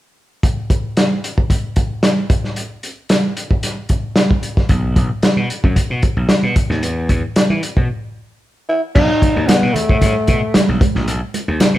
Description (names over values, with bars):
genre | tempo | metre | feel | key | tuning
funk | 113 BPM | 4/4 | straight | B mixolydian | A4 = 436 Hz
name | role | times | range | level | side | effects
vintage drum kit | drums | 0.4-11.7 s | crash cymbal, hi-hat, kick drum, snare drum | -15 LUFS | equal | none
gritty slap bass | bass | 4.7-11.8 s | A#1 to E3 | -20 LUFS | equal | overdrive
growling tenor saxophone | melody | 8.7-10.8 s | A3 to E4 | -17 LUFS | left 1 dB | none
congas | percussion | 9.2-11.7 s | none | -25 LUFS | right 4 dB | none
room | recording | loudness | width
light reverb | band playing live in one room | -14 LUFS | side -14 dB against mid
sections
0.4-9.0 A section; 9.0-11.8 B section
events
break 7.9-9.0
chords
0.4 N.C.; 6.8 E5; 9.0 B7